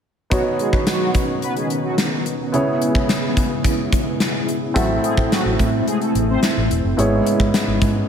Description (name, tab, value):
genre	1980s-style pop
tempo	108 BPM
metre	4/4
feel	straight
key	unclear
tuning	A4 = 439 Hz
part	warm concert grand piano	accompaniment	0.3-8.1 s	G#2 to E5	-22 LUFS	right 1 dB	none
part	string machine, cellos	sustained chords	0.3-8.1 s	C#3 to E4	-24 LUFS	equal	ensemble chorus
part	mellow synth brass	stabs	0.3-6.4 s	F#3 to C5	-25 LUFS	equal	chorus, phaser, tape echo
part	gated 80s drum kit	drums	0.3-7.9 s	hi-hat, kick drum, snare drum	-20 LUFS	equal	gated reverb
part	vintage muted fingered electric bass	bass	4.8-8.0 s	E1 to A2	-22 LUFS	equal	none
room	light reverb, small room ambience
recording	none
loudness	-17 LUFS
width	side -8 dB against mid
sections	0.3-8.1 A section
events	none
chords	0.3 Badd9; 2.5 C#m7; 4.8 Am; 7.0 E6/G#